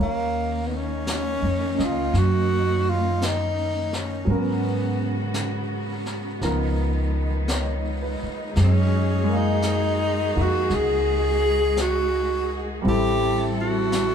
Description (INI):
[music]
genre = jazz ballad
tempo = 56 BPM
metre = 4/4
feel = swing 68% on 8ths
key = Eb minor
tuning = A4 = 440 Hz
[part]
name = warm tenor saxophone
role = melody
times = 0.0-14.1 s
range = Bb3 to Ab4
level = -24 LUFS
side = equal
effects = none
[part]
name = warm grand piano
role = accompaniment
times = 0.0-14.1 s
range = Eb3 to F5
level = -29 LUFS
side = right 1 dB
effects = none
[part]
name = rich studio cello section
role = sustained chords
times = 0.0-14.1 s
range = Db3 to A4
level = -30 LUFS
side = left 2 dB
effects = none
[part]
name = upright bass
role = bass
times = 0.0-14.1 s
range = A1 to Ab2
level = -24 LUFS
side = equal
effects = none
[part]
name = jazz brush drum kit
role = drums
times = 1.1-14.1 s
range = brushed snare drum, hi-hat, snare drum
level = -34 LUFS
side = left 1 dB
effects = none
[sound]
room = moderate studio reverb, RT60 0.7 s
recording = band playing live in one room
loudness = -21 LUFS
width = side -8 dB against mid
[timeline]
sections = 0.0-14.1 A section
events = none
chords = 0.0 Ebm9; 4.3 Abm11; 6.4 Db13; 8.6 Gbmaj9; 12.8 Am7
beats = 1.06 2.14 3.21 | 4.28 5.35 6.42 7.49 | 8.56 9.63 10.70 11.77 | 12.85 13.92